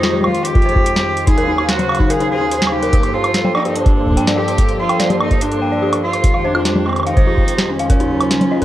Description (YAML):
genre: IDM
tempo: 145 BPM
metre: 4/4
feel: straight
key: G phrygian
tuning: A4 = 440 Hz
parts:
  - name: rich cello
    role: melody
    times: 0.0-8.6 s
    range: C4 to Ab4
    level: -20 LUFS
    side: right 1 dB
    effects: vintage 12-bit sampler grit, dub echo
  - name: hollow soft pad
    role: sustained chords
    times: 0.0-8.6 s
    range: Eb2 to F5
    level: -21 LUFS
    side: equal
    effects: chorus
  - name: dark detuned synth bell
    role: arpeggios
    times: 0.0-8.6 s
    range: Eb4 to G5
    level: -21 LUFS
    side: left 3 dB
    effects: chorus, ping-pong delay
  - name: booming analog drum machine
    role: drums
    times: 0.0-8.6 s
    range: congas, hi-hat, snare drum, woodblock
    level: -20 LUFS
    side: right 1 dB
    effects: overdrive
  - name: flickering grainy texture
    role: texture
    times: 0.0-8.6 s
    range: C5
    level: -26 LUFS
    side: right 2 dB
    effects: built-in reverb, sidechain pumping
  - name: electronic kick drum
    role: drums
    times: 0.6-8.6 s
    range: none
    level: -14 LUFS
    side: equal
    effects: overdrive
room: light reverb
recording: worn, warbling old tape, cassette tape, warbly pitch drift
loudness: -13 LUFS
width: side -14 dB against mid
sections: 0.0-8.6 A section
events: none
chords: 0.0 Fm9; 1.3 Ebm9; 2.9 Gm9; 6.2 Fm9; 7.9 Ebm9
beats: 0.03 0.45 0.86 | 1.27 1.69 2.10 2.52 | 2.93 3.34 3.76 4.17 | 4.58 5.00 5.41 5.83 | 6.24 6.65 7.07 7.48 | 7.89 8.31